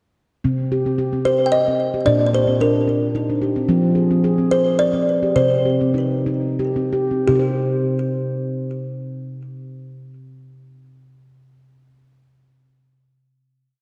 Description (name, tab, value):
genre	world meditative, meditative tuned percussion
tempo	84-111 BPM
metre	3/4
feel	swing 54% on 16ths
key	C minor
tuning	A4 = 440 Hz
part	handpan	arpeggios	0.4-10.6 s	Bb2 to C5	-22 LUFS	equal	none
part	kalimba	melody	1.3-10.5 s	G4 to G5	-22 LUFS	equal	delay
room	wet lush hall reverb, RT60 2.5 s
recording	dreamy mix soaked in reverb, cassette tape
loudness	-19 LUFS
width	mono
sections	0.4-7.3 A section; 7.3-11.6 final chord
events	slowing down 3.7-7.3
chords	0.4 Cm; 2.1 Bb; 3.7 Fm; 5.4 Cm